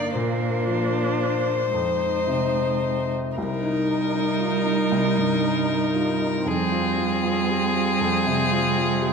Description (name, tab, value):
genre	neoclassical piano and strings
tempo	116 BPM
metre	3/4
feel	rubato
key	F dorian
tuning	A4 = 440 Hz
part	rich violin	melody	0.0-9.1 s	Ab4 to D5	-25 LUFS	left 4 dB	none
part	rich cello	second line	0.0-9.1 s	G3 to Bb3	-27 LUFS	right 5 dB	none
part	warm upright piano	accompaniment	0.0-9.1 s	C2 to Bb4	-26 LUFS	left 1 dB	none
part	warm viola	accompaniment	0.0-9.1 s	C4 to Eb4	-28 LUFS	right 2 dB	none
room	wet concert hall reverb, RT60 2.3 s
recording	recorded in a church or concert hall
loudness	-20 LUFS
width	side -5 dB against mid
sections	0.0-3.4 A section; 3.4-9.1 B section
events	none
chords	0.1 Bbadd9; 1.7 Fm7; 3.4 Cm7; 6.5 Fmadd9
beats	| 0.15 0.66 1.19 | 1.74 2.29 2.83 | 3.37 3.89 4.41 | 4.92 5.44 5.95 | 6.47 6.98 7.49 | 8.01 8.52 9.02